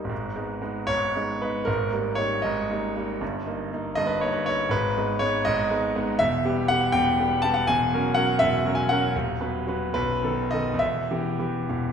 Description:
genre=classical, romantic character piece for solo piano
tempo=67-83 BPM (dotted quarters)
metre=6/8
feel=rubato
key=G# minor, E minor from 6.2 s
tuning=A4 = 440 Hz
part: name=clear concert grand piano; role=solo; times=0.0-11.9 s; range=B0 to A5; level=-22 LUFS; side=equal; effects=none
room=wet concert hall reverb, RT60 1.7 s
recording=recorded in a church or concert hall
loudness=-22 LUFS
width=side -7 dB against mid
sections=0.1-11.9 A section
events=none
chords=0.1 G#m; 1.7 D#/G#; 3.2 D#/G; 4.7 G#m; 6.2 Em; 7.7 F#7/E; 9.1 B/D#; 9.9 B7; 10.8 Em

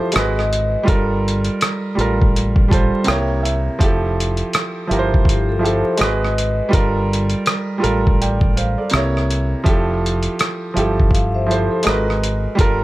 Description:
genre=lo-fi hip hop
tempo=82 BPM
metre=4/4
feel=swing 62% on 16ths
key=F major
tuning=A4 = 441 Hz
part: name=vibraphone with soft mallets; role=second line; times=0.0-0.9, 5.3-6.7, 11.1-12.1 s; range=E4 to F5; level=-24 LUFS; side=left 3 dB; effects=low-pass filter, analog delay
part: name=felt-muted upright piano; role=accompaniment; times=0.0-12.8 s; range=C3 to A5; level=-19 LUFS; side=right 2 dB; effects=low-pass filter
part: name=lo-fi sampler-style drum kit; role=drums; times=0.1-12.8 s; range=hi-hat, kick drum, rim click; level=-18 LUFS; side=equal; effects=none
part: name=deep dub fingered electric bass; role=bass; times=0.2-12.8 s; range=F1 to C2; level=-21 LUFS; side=equal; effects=none
room=little or no reverb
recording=vinyl crackle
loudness=-15 LUFS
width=side -17 dB against mid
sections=0.0-12.8 A section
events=none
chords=0.1 Abm7; 0.9 Gm9; 3.1 C7b9; 3.8 Fmaj9; 6.0 Abm7; 6.7 Gm9; 8.9 C7b9; 9.7 Fmaj9; 11.9 Abm9

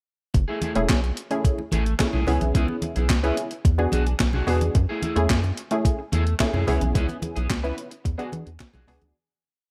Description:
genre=early-eighties boogie funk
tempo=109 BPM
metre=4/4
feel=straight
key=F# minor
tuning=A4 = 441 Hz
part: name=electric guitar at the edge of break-up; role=riff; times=0.3-9.1 s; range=A3 to B4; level=-34 LUFS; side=equal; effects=lush chorus
part: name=rubbery square bass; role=bass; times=0.3-9.1 s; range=E1 to E3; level=-26 LUFS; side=equal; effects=none
part: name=clean 12-bit digital drum machine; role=drums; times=0.3-9.1 s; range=handclaps, hi-hat, kick drum, snare drum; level=-26 LUFS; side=equal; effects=gated reverb
part: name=congas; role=percussion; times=0.3-9.1 s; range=none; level=-35 LUFS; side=equal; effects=none
part: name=funky polysynth comp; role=accompaniment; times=0.8-9.2 s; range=A3 to B4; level=-29 LUFS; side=equal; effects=chorus
room=little or no reverb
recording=none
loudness=-23 LUFS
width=mono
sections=0.3-9.2 verse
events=fade-out 7.0-9.2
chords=0.3 F#m9 (rootless); 2.3 C#m7; 3.6 E9; 4.7 F#m9; 6.7 C#m7; 8.1 E9

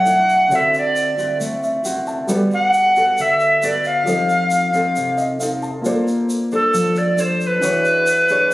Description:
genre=bossa nova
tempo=135 BPM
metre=4/4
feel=straight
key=unclear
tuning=A4 = 444 Hz
part: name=tenor recorder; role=melody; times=0.0-8.5 s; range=A4 to F#5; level=-15 LUFS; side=equal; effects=none
part: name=nylon-string guitar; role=accompaniment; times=0.0-8.5 s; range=C3 to C#5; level=-22 LUFS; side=left 1 dB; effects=none
part: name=warm baby grand piano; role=accompaniment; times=0.0-8.5 s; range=B2 to A5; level=-26 LUFS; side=equal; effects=none
part: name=tube shaker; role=percussion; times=0.1-8.5 s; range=none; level=-33 LUFS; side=equal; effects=none
room=light reverb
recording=recorded on a phone in the room, studio reverb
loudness=-15 LUFS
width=side -18 dB against mid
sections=0.0-8.5 A section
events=grand piano fill 1.4-2.3, 5.0-5.9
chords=0.0 Bm11; 0.5 D9; 2.3 Gmaj9; 4.1 F7; 5.9 Bbmaj9; 7.6 E13

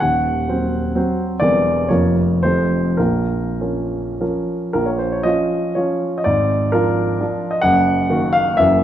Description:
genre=classical, romantic triple-time dance for piano with dotted rhythms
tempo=95-141 BPM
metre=3/4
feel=rubato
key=Bb minor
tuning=A4 = 439 Hz
part: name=warm grand piano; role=solo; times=0.0-8.8 s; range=Eb1 to Gb5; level=-16 LUFS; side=equal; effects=none
room=moderate scoring stage reverb, RT60 1.6 s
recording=none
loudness=-16 LUFS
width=side -11 dB against mid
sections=0.0-4.8 A section; 4.8-8.8 A section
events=none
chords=0.0 Cdim/Eb; 1.4 C7/E; 1.9 Bbm/F; 2.4 F; 3.0 Bbm; 6.3 Bb7/Ab; 7.6 Ebm/Gb

